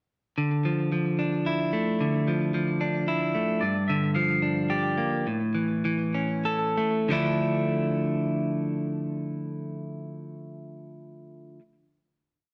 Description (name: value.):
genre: post-rock.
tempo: 90-112 BPM.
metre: 3/4.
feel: straight.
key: D harmonic minor.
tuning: A4 = 440 Hz.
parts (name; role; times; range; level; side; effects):
clean electric guitar; arpeggios; 0.4-11.6 s; G2 to A4; -28 LUFS; equal; slapback echo.
twangy electric guitar; arpeggios; 3.6-5.3 s; D5 to F5; -32 LUFS; equal; slapback echo.
room: wet large studio reverb, RT60 1.3 s, digital ambience.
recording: dark, warm production.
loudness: -27 LUFS.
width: mono.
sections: 0.4-7.1 A section; 7.1-11.1 final chord.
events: slowing down 3.6-7.1.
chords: 0.4 Dmadd9; 3.6 Gm7; 5.3 A; 7.1 Dmadd9.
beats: | 0.38 0.92 1.46 | 2.00 2.54 3.07 | 3.61 4.15 4.70 | 5.26 5.85 6.46 | 7.11 7.78 8.44 | 9.11 9.78 10.44.